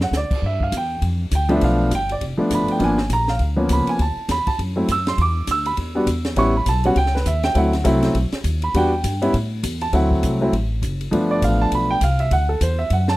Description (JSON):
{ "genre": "jazz, small-group swing and bop", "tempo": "202 BPM", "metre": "4/4", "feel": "swing 60% on 8ths", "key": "D mixolydian", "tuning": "A4 = 439 Hz", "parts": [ { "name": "warm concert grand piano", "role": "accompaniment", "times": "0.0-13.2 s", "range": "F3 to E6", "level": "-20 LUFS", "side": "right 1 dB", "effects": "none" }, { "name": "upright bass", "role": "bass", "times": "0.0-13.2 s", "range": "F1 to A2", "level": "-21 LUFS", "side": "equal", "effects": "none" }, { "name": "open jazz drum kit", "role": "drums", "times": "0.0-13.1 s", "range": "crash cymbal, hi-hat, kick drum, ride cymbal, snare drum", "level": "-28 LUFS", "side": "equal", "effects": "none" } ], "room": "small room reverb", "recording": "dry, close 1970s-style studio recording", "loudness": "-17 LUFS", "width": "side -17 dB against mid", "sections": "0.0-9.9 A section; 9.9-13.2 A section", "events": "none", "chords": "0.4 G7; 2.8 G#dim7; 4.0 D7; 5.2 E7(no3); 6.4 A7; 7.6 D7; 8.1 B; 8.7 Em7; 9.3 A5; 9.9 D7; 11.1 G7; 12.3 D" }